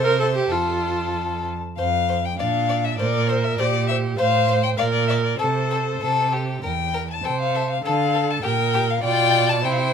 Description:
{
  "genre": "quick classical-period movement for string quartet",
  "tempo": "99 BPM",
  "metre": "2/4",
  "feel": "rubato",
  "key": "F major",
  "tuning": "A4 = 438 Hz",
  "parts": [
    { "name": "rich violin", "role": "melody", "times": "0.0-9.9 s", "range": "C5 to A5", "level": "-24 LUFS", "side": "left 9 dB", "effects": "none" },
    { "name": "clear violin", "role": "second line", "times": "0.0-9.9 s", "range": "E4 to D5", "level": "-26 LUFS", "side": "left 3 dB", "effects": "none" },
    { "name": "clear cello", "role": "bass", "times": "0.0-9.9 s", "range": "E2 to D3", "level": "-24 LUFS", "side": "right 4 dB", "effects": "none" },
    { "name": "rich viola", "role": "accompaniment", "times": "0.1-9.9 s", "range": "D4 to D5", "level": "-24 LUFS", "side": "right 4 dB", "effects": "none" }
  ],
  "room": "light reverb",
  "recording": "minimal, uncompressed stereo recording",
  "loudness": "-19 LUFS",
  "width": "side -7 dB against mid",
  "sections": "0.0-1.8 A section; 1.8-9.9 A section",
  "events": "none",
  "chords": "0.0 C; 0.5 F; 2.4 Bb; 3.0 C5/Bb; 4.2 F/A; 4.8 Bb; 5.4 Am/C; 6.6 Em; 7.3 Am/C (rootless); 7.8 Dm; 8.4 Gm/Bb; 9.0 G7/B"
}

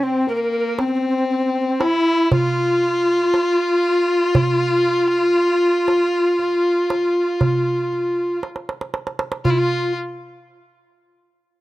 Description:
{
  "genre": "Arabic maqam ensemble",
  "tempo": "118 BPM (eighths)",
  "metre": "10/8",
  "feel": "straight",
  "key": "unclear",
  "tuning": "A4 = 439 Hz",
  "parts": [
    { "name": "mellow tenor recorder", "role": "melody", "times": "0.0-9.9 s", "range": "C4 to Bb4", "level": "-18 LUFS", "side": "equal", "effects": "none" },
    { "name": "rich violin", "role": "second line", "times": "0.0-10.0 s", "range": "Bb3 to F4", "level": "-23 LUFS", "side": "left 3 dB", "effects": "none" },
    { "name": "darbuka", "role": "percussion", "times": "0.3-9.9 s", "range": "none", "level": "-22 LUFS", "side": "right 2 dB", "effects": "none" }
  ],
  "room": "studio reverb",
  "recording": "dry, close 1970s-style studio recording",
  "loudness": "-16 LUFS",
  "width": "side -16 dB against mid",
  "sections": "0.0-9.4 A section; 9.4-11.6 B section",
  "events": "drum fill 8.4-9.4",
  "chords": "none"
}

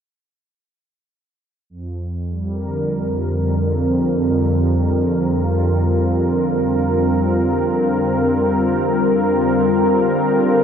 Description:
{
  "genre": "ambient",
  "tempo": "free time",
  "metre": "none",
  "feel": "none",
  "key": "unclear",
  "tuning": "A4 = 440 Hz",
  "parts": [
    { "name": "warm analog pad", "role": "solo", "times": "1.7-10.6 s", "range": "F2 to Bb4", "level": "-16 LUFS", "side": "equal", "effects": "chorus" }
  ],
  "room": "wet huge ambient reverb, RT60 9.2 s",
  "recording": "dreamy mix soaked in reverb",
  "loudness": "-16 LUFS",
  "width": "side -8 dB against mid",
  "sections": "1.7-10.6 A section",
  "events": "none",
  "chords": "1.7 Gm7/F; 9.8 Fsus4"
}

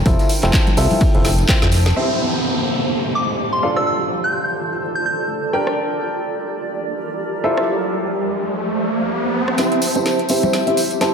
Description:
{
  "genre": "piano house",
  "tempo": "126 BPM",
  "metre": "4/4",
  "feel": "swing 57% on 16ths",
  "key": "C mixolydian",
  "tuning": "A4 = 440 Hz",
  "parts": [
    { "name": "fat analog bass", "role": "bass", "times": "0.0-1.9 s", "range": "F1 to C2", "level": "-16 LUFS", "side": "equal", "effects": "tube saturation, sidechain pumping" },
    { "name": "granular cloud pad", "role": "texture", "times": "0.0-11.1 s", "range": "F3 to C6", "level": "-24 LUFS", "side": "equal", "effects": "built-in reverb, sidechain pumping" },
    { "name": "clear upright piano", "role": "riff", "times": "0.1-11.1 s", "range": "C4 to A5", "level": "-22 LUFS", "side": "equal", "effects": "sidechain pumping, low-pass filter, diffuse ambient delay" },
    { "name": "electronic kick drum", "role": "drums", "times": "0.1-1.6 s", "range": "none", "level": "-16 LUFS", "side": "equal", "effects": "overdrive, studio reverb" },
    { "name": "garage drum kit", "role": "drums", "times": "0.1-11.1 s", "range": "crash cymbal, handclaps, hi-hat, rim click, snare drum", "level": "-24 LUFS", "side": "right 1 dB", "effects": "overdrive, low-pass filter on hats, studio reverb, low-pass filter on snare, low-pass filter on cymbals" },
    { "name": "vintage drum kit", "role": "drums", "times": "0.1-1.9 s", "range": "hi-hat, snare drum", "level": "-36 LUFS", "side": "equal", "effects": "none" },
    { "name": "tambourine and congas", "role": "percussion", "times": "0.1-1.9, 9.6-11.1 s", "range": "none", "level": "-26 LUFS", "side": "left 3 dB", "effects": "none" },
    { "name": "downlifter and riser", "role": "sound effects", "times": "2.0-11.1 s", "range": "none", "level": "-23 LUFS", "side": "right 1 dB", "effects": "none" },
    { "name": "soft synth bell", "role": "melody", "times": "3.2-5.1 s", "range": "C6 to G6", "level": "-22 LUFS", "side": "equal", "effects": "chorus, diffuse ambient delay" }
  ],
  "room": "wet lush hall reverb, RT60 1.5 s, studio reverb",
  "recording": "dreamy mix soaked in reverb",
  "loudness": "-16 LUFS",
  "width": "side -6 dB against mid",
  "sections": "0.0-2.0 A section; 2.0-9.6 B section; 9.6-11.1 C section",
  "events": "drum fill 1.2-2.0, 9.6-11.1; riser 5.8-9.6, 9.6-11.1; build-up 9.6-11.1; filter sweep on upright piano 9.6-11.1",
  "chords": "0.0 Fmaj7; 2.0 C; 3.6 Dm; 5.5 Gm; 7.4 Fmaj7; 9.6 C"
}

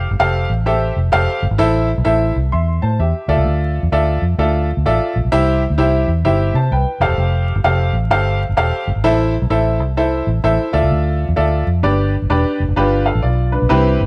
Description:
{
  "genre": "uptempo 1960s-style soul",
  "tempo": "129 BPM",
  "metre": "4/4",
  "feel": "swing 63% on 8ths",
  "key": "unclear",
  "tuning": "A4 = 440 Hz",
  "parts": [
    { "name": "clear grand piano", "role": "accompaniment", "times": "0.0-14.0 s", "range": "C4 to C6", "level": "-19 LUFS", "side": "equal", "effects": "none" },
    { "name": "vintage muted fingered electric bass", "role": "bass", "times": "0.0-14.1 s", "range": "E1 to C3", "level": "-19 LUFS", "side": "equal", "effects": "none" }
  ],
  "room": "light reverb",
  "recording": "vinyl crackle",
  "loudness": "-16 LUFS",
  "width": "mono",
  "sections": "0.0-12.8 A section; 12.8-14.1 B section",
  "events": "none",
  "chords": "0.0 Fadd9; 1.6 Am; 3.2 Dmadd9; 5.3 C; 6.9 Fadd9; 9.0 Am; 10.7 Dmadd9; 11.8 G; 12.8 G7"
}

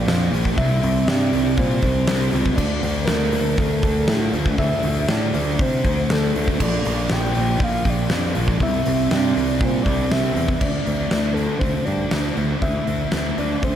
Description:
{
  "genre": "rock, shoegaze and dream pop",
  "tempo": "119 BPM",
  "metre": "4/4",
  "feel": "straight",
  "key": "D minor",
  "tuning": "A4 = 439 Hz",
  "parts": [
    { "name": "soft octave-layered synth lead", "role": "melody", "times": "0.0-13.8 s", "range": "F4 to G5", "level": "-26 LUFS", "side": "equal", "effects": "chorus, analog delay" },
    { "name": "thick fuzz guitar", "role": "riff", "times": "0.0-13.8 s", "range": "Bb2 to D4", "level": "-22 LUFS", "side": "right 1 dB", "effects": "distortion, analog chorus" },
    { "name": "picked electric bass", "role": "bass", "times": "0.0-13.8 s", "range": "Bb1 to C3", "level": "-24 LUFS", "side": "equal", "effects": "none" },
    { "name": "huge arena drum kit", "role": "drums", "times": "0.1-13.7 s", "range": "crash cymbal, hi-hat, kick drum, snare drum", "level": "-24 LUFS", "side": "equal", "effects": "none" }
  ],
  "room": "moderate huge ambient reverb, RT60 4.5 s",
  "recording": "dreamy mix soaked in reverb",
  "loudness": "-18 LUFS",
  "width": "side -10 dB against mid",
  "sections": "0.0-10.6 A section; 10.6-13.8 B section",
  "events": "none",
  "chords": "0.0 Bb; 0.6 C; 2.6 D5; 6.6 Bb; 8.6 C; 10.6 D5"
}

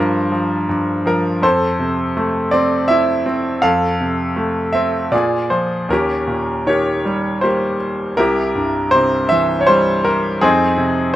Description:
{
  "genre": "classical, lyrical solo piano",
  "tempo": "81 BPM",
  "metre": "3/4",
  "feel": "rubato",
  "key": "F major",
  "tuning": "A4 = 442 Hz",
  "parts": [
    { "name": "bright grand piano", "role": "solo", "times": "0.0-11.2 s", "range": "C2 to F5", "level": "-14 LUFS", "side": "equal", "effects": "none" }
  ],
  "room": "light reverb",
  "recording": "minimal, uncompressed stereo recording",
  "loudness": "-14 LUFS",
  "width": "side -13 dB against mid",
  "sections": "0.0-5.9 A section; 5.9-11.2 B section",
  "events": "none",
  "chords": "0.0 Csus4/G; 1.4 Fmaj7; 3.6 F; 5.1 Bb7; 5.9 Eb7; 8.2 C7; 10.4 Fm7"
}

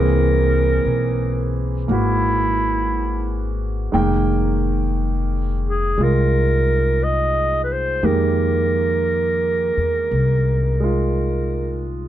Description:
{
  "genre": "jazz ballad",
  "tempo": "58 BPM",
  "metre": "4/4",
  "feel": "swing 67% on 8ths",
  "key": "F minor",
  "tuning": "A4 = 440 Hz",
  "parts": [
    { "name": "breathy clarinet", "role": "melody", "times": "0.0-11.9 s", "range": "E4 to Eb5", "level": "-21 LUFS", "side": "right 2 dB", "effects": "none" },
    { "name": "clear concert grand piano", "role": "accompaniment", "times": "0.0-12.1 s", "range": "Eb3 to G5", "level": "-23 LUFS", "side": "right 3 dB", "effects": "none" },
    { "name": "upright bass", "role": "bass", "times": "0.0-12.1 s", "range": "F1 to F2", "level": "-20 LUFS", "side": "left 2 dB", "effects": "none" }
  ],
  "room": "little or no reverb",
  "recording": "dark, warm production",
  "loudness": "-17 LUFS",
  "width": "side -12 dB against mid",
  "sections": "0.0-12.1 A section",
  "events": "none",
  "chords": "0.0 Caug7; 3.9 Fm11"
}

